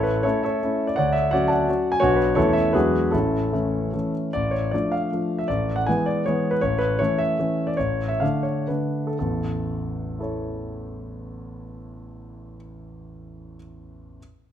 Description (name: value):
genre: classical, romantic triple-time dance for piano with dotted rhythms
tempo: 110-185 BPM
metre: 3/4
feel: rubato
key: A major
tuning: A4 = 440 Hz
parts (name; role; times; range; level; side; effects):
- warm concert grand piano; solo; 0.0-14.2 s; A1 to A5; -22 LUFS; equal; none
room: moderate recital hall reverb, RT60 1.3 s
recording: close, detailed microphones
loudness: -21 LUFS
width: side -10 dB against mid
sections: 0.0-4.3 A section; 4.3-9.2 B section; 9.2-12.1 C section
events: slowing down 6.1-9.2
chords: 0.0 A; 1.0 Dmaj7; 2.0 Bm; 2.4 A/E; 2.7 E9; 3.1 A; 4.3 Dm/A; 5.5 E/A; 6.6 A; 7.8 D5/A; 9.2 A